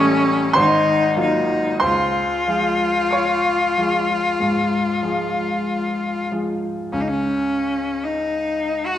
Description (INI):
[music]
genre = classical, romantic duo for cello and grand piano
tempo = 45-56 BPM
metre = 4/4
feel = rubato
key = Db major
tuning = A4 = 441 Hz
[part]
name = rich cello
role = melody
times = 0.0-9.0 s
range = Db4 to Gb4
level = -19 LUFS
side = left 2 dB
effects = none
[part]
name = clear baby grand piano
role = accompaniment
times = 0.0-9.0 s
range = Ab1 to Eb6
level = -21 LUFS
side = right 1 dB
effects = none
[sound]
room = wet recital hall reverb, RT60 1.3 s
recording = none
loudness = -17 LUFS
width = side -11 dB against mid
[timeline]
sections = 0.0-6.9 A section; 6.9-9.0 B section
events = none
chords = 0.0 A7; 0.6 Ab13; 1.8 Db; 6.9 N.C.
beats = 0.55 | 1.82 3.13 4.41 5.66 | 6.92 8.04